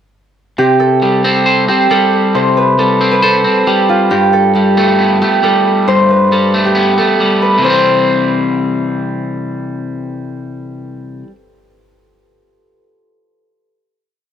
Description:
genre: hip hop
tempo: 136 BPM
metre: 4/4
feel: half-time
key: C major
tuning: A4 = 440 Hz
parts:
  - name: concert harp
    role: melody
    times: 0.6-9.6 s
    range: F4 to C5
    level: -12 LUFS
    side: right 1 dB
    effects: none
  - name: electric guitar at the edge of break-up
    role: accompaniment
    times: 0.6-11.3 s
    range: G2 to C5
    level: -13 LUFS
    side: left 1 dB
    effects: none
room: light reverb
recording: faint mains hum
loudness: -10 LUFS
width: side -9 dB against mid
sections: 0.6-7.6 hook; 7.6-11.2 final chord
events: none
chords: 0.6 C5; 4.1 Gadd9; 7.6 C

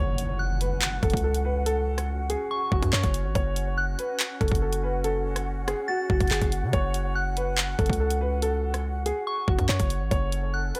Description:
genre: hip hop, drill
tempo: 142 BPM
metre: 4/4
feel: half-time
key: F# minor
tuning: A4 = 440 Hz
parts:
  - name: warm upright piano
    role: melody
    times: 0.0-10.8 s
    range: F#4 to C#5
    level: -33 LUFS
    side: equal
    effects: low-pass filter, digital delay
  - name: mellow large flute ensemble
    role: sustained chords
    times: 0.0-10.8 s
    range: C#4 to F#5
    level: -38 LUFS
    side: equal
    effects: none
  - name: hard-hitting 808-style bass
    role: bass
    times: 0.0-10.7 s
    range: F#1 to C#3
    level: -30 LUFS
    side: equal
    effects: none
  - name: impact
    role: sound effects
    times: 0.0-1.7 s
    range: none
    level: -39 LUFS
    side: equal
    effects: none
  - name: drill drum kit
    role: drums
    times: 0.2-10.8 s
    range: handclaps, hi-hat, kick drum, rim click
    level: -29 LUFS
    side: equal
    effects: none
  - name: soft synth bell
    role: second line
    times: 0.4-10.8 s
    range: C#6 to A6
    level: -36 LUFS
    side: equal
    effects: chorus, phaser, digital delay
room: little or no reverb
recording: none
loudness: -26 LUFS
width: mono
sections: 0.0-10.8 A section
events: impact 0.0-1.7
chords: 0.0 F#m

